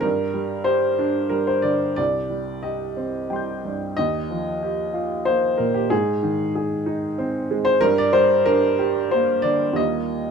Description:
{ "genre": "neoclassical minimalist piano", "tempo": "92 BPM", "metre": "3/4", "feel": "rubato", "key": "unclear", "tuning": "A4 = 440 Hz", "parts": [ { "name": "clear upright piano", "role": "solo", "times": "0.0-10.3 s", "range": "C2 to G6", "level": "-19 LUFS", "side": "equal", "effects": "none" } ], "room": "light reverb", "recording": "minimal, uncompressed stereo recording", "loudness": "-19 LUFS", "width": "side -6 dB against mid", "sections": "0.0-10.3 A section", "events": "none", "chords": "0.0 Gm; 2.0 Cm; 4.0 Ebadd9; 5.9 Ab; 7.8 Gm; 9.8 Ebadd9" }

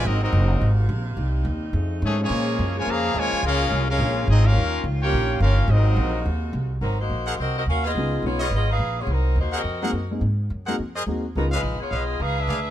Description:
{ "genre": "jazz, big band swing", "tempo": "212 BPM", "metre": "4/4", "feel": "swing 60% on 8ths", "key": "Ab major", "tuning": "A4 = 438 Hz", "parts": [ { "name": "bright trumpet section", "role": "melody", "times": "0.0-6.3 s", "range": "A3 to Bb5", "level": "-25 LUFS", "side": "left 2 dB", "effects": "none" }, { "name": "clear trombone section", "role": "second line", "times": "0.0-6.3 s", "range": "Db3 to G4", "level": "-28 LUFS", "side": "equal", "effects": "none" }, { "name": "warm saxophone section", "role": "sustained chords", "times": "0.0-6.8 s", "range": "C3 to Gb4", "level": "-33 LUFS", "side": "equal", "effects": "none" }, { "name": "upright bass", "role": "bass", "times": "0.0-12.7 s", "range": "Gb1 to Bb2", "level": "-22 LUFS", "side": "equal", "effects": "none" }, { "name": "clear saxophone section", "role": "melody", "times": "6.8-12.7 s", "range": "Gb3 to F5", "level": "-27 LUFS", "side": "left 1 dB", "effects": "none" }, { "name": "bright trumpet section", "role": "stabs", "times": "7.3-12.6 s", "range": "F4 to Gb5", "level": "-30 LUFS", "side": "equal", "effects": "none" }, { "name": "dark grand piano", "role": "accompaniment", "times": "8.0-11.5 s", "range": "Ab3 to Ab4", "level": "-28 LUFS", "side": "left 1 dB", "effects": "none" } ], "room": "little or no reverb", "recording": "close, detailed microphones", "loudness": "-20 LUFS", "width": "side -12 dB against mid", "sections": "0.0-6.8 A section; 6.8-12.7 B section", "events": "none", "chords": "0.1 Ab9; 1.2 Cm7; 1.7 F7alt; 2.3 Bbm7; 4.6 Eb9; 5.7 Ab9; 8.0 Db9; 9.1 Ab9; 11.4 Db9" }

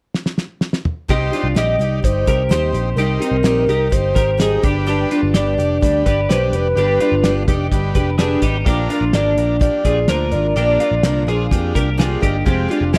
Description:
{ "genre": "jangly indie pop", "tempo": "127 BPM", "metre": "4/4", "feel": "straight", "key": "C minor", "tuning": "A4 = 440 Hz", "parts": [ { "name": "cloth-damped thuddy drum kit", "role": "drums", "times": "0.1-13.0 s", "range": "hi-hat, kick drum, snare drum, toms", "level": "-20 LUFS", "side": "equal", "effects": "none" }, { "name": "combo organ", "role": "accompaniment", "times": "1.1-13.0 s", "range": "Ab3 to D5", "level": "-29 LUFS", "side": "equal", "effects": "none" }, { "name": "picked steel-string acoustic guitar", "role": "accompaniment", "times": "1.1-13.0 s", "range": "G2 to Bb4", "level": "-28 LUFS", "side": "equal", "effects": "none" }, { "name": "twelve-string electric guitar", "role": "arpeggios", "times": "1.1-13.0 s", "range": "C4 to C5", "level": "-24 LUFS", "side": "equal", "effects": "analog chorus" }, { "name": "vintage muted picked electric bass", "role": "bass", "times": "1.1-13.0 s", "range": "F1 to F2", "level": "-22 LUFS", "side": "equal", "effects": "none" }, { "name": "warbly nostalgic lead", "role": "melody", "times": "1.6-13.0 s", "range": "Bb4 to Eb5", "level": "-22 LUFS", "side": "equal", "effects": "chorus" } ], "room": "light reverb", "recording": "dry, close 1970s-style studio recording", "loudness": "-17 LUFS", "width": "mono", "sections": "0.0-1.1 A section; 1.1-13.0 B section", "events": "drum fill 0.1-1.1", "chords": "0.0 N.C.; 1.1 Cm; 4.6 G; 8.7 Bb; 12.5 Fmadd9" }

